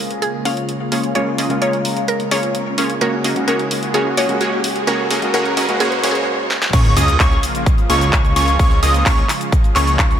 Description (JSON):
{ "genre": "EDM, festival progressive house", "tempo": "129 BPM", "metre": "4/4", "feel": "straight", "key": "Db major", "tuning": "A4 = 440 Hz", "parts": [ { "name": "mallet-like synth pluck", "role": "melody", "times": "0.0-6.3 s", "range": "Ab4 to F5", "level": "-23 LUFS", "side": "equal", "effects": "chorus, tape echo" }, { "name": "warm grand piano", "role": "accompaniment", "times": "0.0-6.8 s", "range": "Db3 to Gb4", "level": "-24 LUFS", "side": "left 2 dB", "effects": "sidechain pumping, tape echo" }, { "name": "lush unison pad", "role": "sustained chords", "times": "0.0-10.2 s", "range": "Db3 to Bb4", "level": "-26 LUFS", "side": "left 1 dB", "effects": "chorus, phaser, sidechain pumping" }, { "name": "riser and sub drop", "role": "sound effects", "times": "1.3-8.6 s", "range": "none", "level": "-26 LUFS", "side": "right 1 dB", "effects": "none" }, { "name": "big-room dance drum kit", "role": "drums", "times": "0.1-10.2 s", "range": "cabasa, crash cymbal, handclaps, hi-hat, snare drum", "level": "-22 LUFS", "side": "equal", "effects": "high-pass filter on hats, studio reverb, high-pass filter on snare, high-pass filter on cymbals, high-pass filter on perc" }, { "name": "supersaw stab", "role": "riff", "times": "0.5-10.2 s", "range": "Bb3 to Eb5", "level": "-21 LUFS", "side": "right 1 dB", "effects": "sidechain pumping, low-pass filter, tape echo" }, { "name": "plucky unison lead", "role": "arpeggios", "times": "6.7-10.2 s", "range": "Db6 to Eb6", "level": "-20 LUFS", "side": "equal", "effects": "sidechain pumping, tape echo" }, { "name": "wide detuned saw bass", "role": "bass", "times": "6.7-10.2 s", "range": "Db2", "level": "-18 LUFS", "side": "equal", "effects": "chorus, sidechain pumping" }, { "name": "electronic kick drum", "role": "drums", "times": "6.7-10.1 s", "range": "none", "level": "-15 LUFS", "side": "equal", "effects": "studio reverb" } ], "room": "light reverb, digital ambience", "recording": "high-pass filter", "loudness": "-14 LUFS", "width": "side -9 dB against mid", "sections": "0.0-6.7 A section; 6.7-10.2 B section", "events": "build-up 0.0-6.7; filter sweep on supersaw synth 0.0-6.7; filter sweep on analog synth pad 0.0-6.7; riser 1.3-6.3; stop 6.3-6.7; drum fill 6.5; drop 6.7-10.2; impact 6.7-8.6", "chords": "0.0 Db6; 3.0 Gbadd9; 6.7 Db6" }